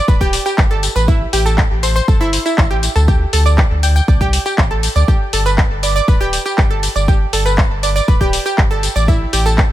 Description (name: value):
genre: progressive house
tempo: 120 BPM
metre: 4/4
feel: straight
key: G major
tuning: A4 = 440 Hz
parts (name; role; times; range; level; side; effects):
- analog pluck; arpeggios; 0.0-9.5 s; E4 to G5; -18 LUFS; right 2 dB; chorus, sidechain pumping, tape echo
- round analog bass; bass; 0.1-9.6 s; D1 to D2; -16 LUFS; equal; sidechain pumping
- electronic kick drum; drums; 0.1-9.7 s; none; -13 LUFS; equal; small room ambience
- house drum kit; drums; 0.1-9.7 s; handclaps, hi-hat, tambourine; -20 LUFS; left 2 dB; small room ambience
room: little or no reverb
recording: none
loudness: -12 LUFS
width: side -14 dB against mid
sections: 0.0-9.7 A section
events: none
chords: 0.0 Gadd9; 1.1 Am7; 3.1 Dsus4; 5.1 G5; 9.1 N.C.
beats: 0.08 0.58 | 1.08 1.58 2.08 2.58 | 3.08 3.58 4.08 4.58 | 5.08 5.58 6.08 6.58 | 7.08 7.58 8.08 8.58 | 9.08 9.58